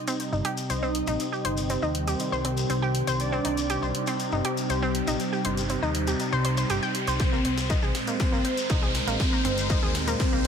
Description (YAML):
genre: melodic techno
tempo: 120 BPM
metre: 4/4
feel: straight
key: C minor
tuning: A4 = 435 Hz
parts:
  - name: deep dark ambient pad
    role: sustained chords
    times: 0.0-10.5 s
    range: Ab3 to G5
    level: -34 LUFS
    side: left 2 dB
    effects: chorus, built-in reverb, sidechain pumping
  - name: brassy analog pad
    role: stabs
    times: 0.0-10.2 s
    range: Bb2 to Eb4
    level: -32 LUFS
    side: right 3 dB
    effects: chorus, sidechain pumping, digital delay
  - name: riser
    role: sound effects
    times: 2.2-10.5 s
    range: none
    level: -35 LUFS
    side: left 1 dB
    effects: none
  - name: analog pluck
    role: arpeggios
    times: 0.1-10.5 s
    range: Bb3 to G5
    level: -31 LUFS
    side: equal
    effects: chorus, sidechain pumping, digital delay
  - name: deep house drum kit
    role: drums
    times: 0.1-10.5 s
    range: hi-hat, snare drum, toms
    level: -36 LUFS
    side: left 2 dB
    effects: high-pass filter on hats, high-pass filter on snare, high-pass filter on toms, high-pass filter on room
  - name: shekere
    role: percussion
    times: 0.1-10.4 s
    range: none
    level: -38 LUFS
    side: left 6 dB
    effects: none
  - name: fat analog bass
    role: bass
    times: 0.3-10.5 s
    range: G1 to Eb2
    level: -30 LUFS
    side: equal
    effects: sidechain pumping
  - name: mellow synth brass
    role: melody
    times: 0.7-10.5 s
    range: G3 to Eb4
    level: -32 LUFS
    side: equal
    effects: chorus, sidechain pumping, ping-pong delay
  - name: soft supersaw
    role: second line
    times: 0.7-10.5 s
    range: G4 to Eb5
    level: -37 LUFS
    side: right 2 dB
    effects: sidechain pumping, digital delay
  - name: electronic kick drum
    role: drums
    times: 7.2-10.3 s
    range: none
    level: -25 LUFS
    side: equal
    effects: overdrive
room: moderate concert hall reverb, RT60 1.9 s, digital ambience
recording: none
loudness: -24 LUFS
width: side -7 dB against mid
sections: 0.0-10.5 A section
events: build-up 0.0-10.5; riser 2.2-10.5; drum fill 7.2-10.5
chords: 0.0 Cm; 7.2 Abadd9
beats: 0.20 0.70 | 1.20 1.70 2.20 2.70 | 3.20 3.70 4.20 4.70 | 5.20 5.70 6.20 6.70 | 7.20 7.70 8.20 8.70 | 9.20 9.70 10.20